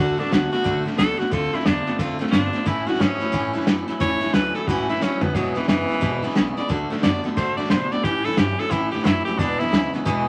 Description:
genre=rockabilly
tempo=178 BPM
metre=4/4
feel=swing 62% on 8ths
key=A major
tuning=A4 = 440 Hz
part: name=bright tenor saxophone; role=melody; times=0.0-9.9 s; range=E3 to D5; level=-27 LUFS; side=equal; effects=none
part: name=picked steel-string acoustic guitar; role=accompaniment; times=0.0-10.3 s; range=E2 to F#4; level=-29 LUFS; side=equal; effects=none
part: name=electric guitar through a small old amp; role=riff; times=0.0-10.2 s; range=E2 to B3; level=-31 LUFS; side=equal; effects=tremolo
part: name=upright bass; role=bass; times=0.0-10.3 s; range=E1 to B2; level=-35 LUFS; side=equal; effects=none
part: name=vintage drum kit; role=drums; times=0.2-10.2 s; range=hi-hat, kick drum, snare drum, toms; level=-26 LUFS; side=equal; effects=none
room=light reverb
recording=vinyl crackle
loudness=-22 LUFS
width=mono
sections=0.0-10.3 A section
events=tenor saxophone solo 0.0-10.3; drum fill 5.0-5.4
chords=0.0 D; 1.3 Dm7; 2.7 A; 5.4 E; 6.7 D; 8.0 A; 9.4 E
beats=0.31 0.65 0.98 | 1.32 1.66 1.99 2.33 | 2.66 3.00 3.33 3.67 | 4.01 4.34 4.68 5.01 | 5.35 5.69 6.02 6.36 | 6.70 7.03 7.37 7.70 | 8.04 8.38 8.71 9.05 | 9.39 9.72 10.06

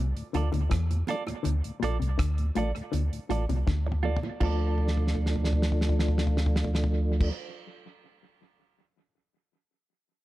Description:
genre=roots reggae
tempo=81 BPM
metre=4/4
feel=straight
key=D minor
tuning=A4 = 443 Hz
part: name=electric guitar with an envelope filter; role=riff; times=0.0-3.9 s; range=A2 to E3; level=-33 LUFS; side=left 7 dB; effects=none
part: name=warm sub bass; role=bass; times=0.0-7.3 s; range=A1 to E2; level=-26 LUFS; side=equal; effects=none
part: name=mellow tonewheel organ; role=accompaniment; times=0.2-7.3 s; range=D2 to D4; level=-34 LUFS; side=left 1 dB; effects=chorus vibrato, slow rotary speaker
part: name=damped 70s drum kit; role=drums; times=0.2-8.8 s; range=crash cymbal, hi-hat, kick drum, rim click, snare drum, toms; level=-31 LUFS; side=equal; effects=analog delay
part: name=clean electric guitar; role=accompaniment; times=0.3-7.9 s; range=F4 to D5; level=-36 LUFS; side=right 6 dB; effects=phaser, dub echo
part: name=bongos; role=percussion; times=0.5-7.3 s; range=none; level=-40 LUFS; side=right 6 dB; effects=none
room=small room ambience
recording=echo-heavy mix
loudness=-25 LUFS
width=side -16 dB against mid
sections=0.0-4.4 A section; 4.4-7.4 B section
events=drum fill 3.7-4.4, 4.8-7.2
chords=0.0 Dm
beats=0.70 | 1.45 2.19 2.93 3.67 | 4.41 5.16 5.90 6.64

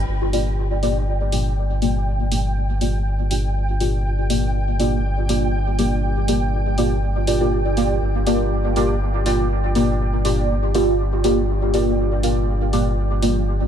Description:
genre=dub techno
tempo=121 BPM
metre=4/4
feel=straight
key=G minor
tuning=A4 = 444 Hz
part: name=dark analog pad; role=sustained chords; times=0.0-13.7 s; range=D4 to D5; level=-39 LUFS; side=right 2 dB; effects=none
part: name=deep mellow chord stab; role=stabs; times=0.0-13.4 s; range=Bb3 to D5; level=-21 LUFS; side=equal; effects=chorus, phaser, dub echo
part: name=warm sub bass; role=bass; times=0.0-13.7 s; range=G1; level=-21 LUFS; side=equal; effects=tube saturation
part: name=flickering grainy texture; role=texture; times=0.0-13.7 s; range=G5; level=-32 LUFS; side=equal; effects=built-in reverb
part: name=electronic hi-hat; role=drums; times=0.3-13.3 s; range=none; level=-31 LUFS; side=equal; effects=overdrive, studio reverb, dub echo
room=light reverb, digital ambience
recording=dark, warm production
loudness=-18 LUFS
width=side -9 dB against mid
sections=0.1-13.7 A section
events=none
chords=0.1 Gm7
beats=| 0.09 0.58 1.08 1.57 | 2.07 2.56 3.06 3.56 | 4.05 4.55 5.04 5.54 | 6.04 6.53 7.03 7.52 | 8.02 8.51 9.01 9.51 | 10.00 10.50 10.99 11.49 | 11.98 12.48 12.98 13.47

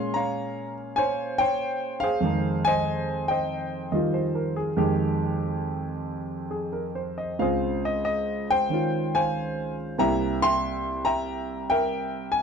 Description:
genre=solo jazz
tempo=94 BPM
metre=4/4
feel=swing 68% on 8ths, rubato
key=F minor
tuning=A4 = 442 Hz
part: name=clear concert grand piano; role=solo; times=0.0-12.4 s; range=C2 to C6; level=-24 LUFS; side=equal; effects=none
room=light reverb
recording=dark, warm production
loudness=-24 LUFS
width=side -6 dB against mid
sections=0.0-12.4 A section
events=none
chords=0.0 Bbm9; 2.2 Fm9; 7.4 Dbmaj7; 10.0 C7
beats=0.33 0.96 1.58 | 2.22 2.85 3.48 4.13 | 4.77 5.42 6.07 6.72 | 7.39 8.05 8.71 9.35 | 9.98 10.61 11.25 11.89

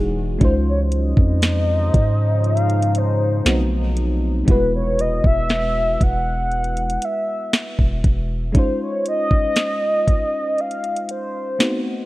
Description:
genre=contemporary R&B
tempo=59 BPM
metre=4/4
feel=straight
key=unclear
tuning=A4 = 438 Hz
part: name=mellow FM electric piano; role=accompaniment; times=0.0-12.1 s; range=G3 to C5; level=-26 LUFS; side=equal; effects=chorus
part: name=deep dark ambient pad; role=sustained chords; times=0.0-4.5 s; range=Db3 to C5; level=-28 LUFS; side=left 1 dB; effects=chorus, built-in reverb, sidechain pumping
part: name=long sustained 808-style bass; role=bass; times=0.0-8.5 s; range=E1 to Ab2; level=-20 LUFS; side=equal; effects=none
part: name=mellow horn-like synth lead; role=melody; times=0.4-12.1 s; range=B4 to F#5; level=-22 LUFS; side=equal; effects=chorus
part: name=smooth R&B drum kit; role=drums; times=0.4-11.8 s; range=hi-hat, kick drum, snare drum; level=-18 LUFS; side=equal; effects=none
room=little or no reverb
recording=worn, warbling old tape, cassette tape, warbly pitch drift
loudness=-17 LUFS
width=side -18 dB against mid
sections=0.0-12.1 A section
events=none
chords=0.4 Dbmaj9; 3.5 B7b9; 4.5 Eadd9; 8.5 Dbmaj9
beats=| 0.41 1.43 2.44 3.46 | 4.48 5.50 6.51 7.53 | 8.55 9.56 10.58 11.60

